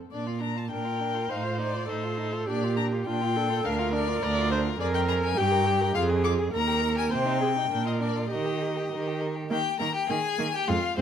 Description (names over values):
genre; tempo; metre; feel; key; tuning
quick classical-period movement for string quartet; 102 BPM; 2/4; straight; Bb major, Eb major from 4.8 s; A4 = 440 Hz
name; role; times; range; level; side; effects
warm violin; melody; 0.1-11.0 s; Bb4 to D6; -30 LUFS; left 9 dB; none
rich violin; second line; 0.1-11.0 s; C4 to Bb4; -34 LUFS; left 2 dB; none
rich cello; bass; 0.1-11.0 s; D2 to Eb3; -29 LUFS; right 3 dB; none
warm viola; accompaniment; 0.7-11.0 s; Ab3 to D5; -30 LUFS; right 3 dB; none
room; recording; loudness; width
moderate recital hall reverb, RT60 1.5 s; close, detailed microphones; -24 LUFS; side -8 dB against mid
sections
0.1-9.5 A section; 9.5-11.0 B section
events
none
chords
0.1 Bb; 1.3 F7/A; 2.5 Bb; 3.6 Bb/D; 4.8 Bb5/F; 5.4 Gm; 6.0 Ddim/F (rootless); 6.5 Eb; 7.1 Cm; 7.7 Bb; 8.3 Eb; 9.5 Eb5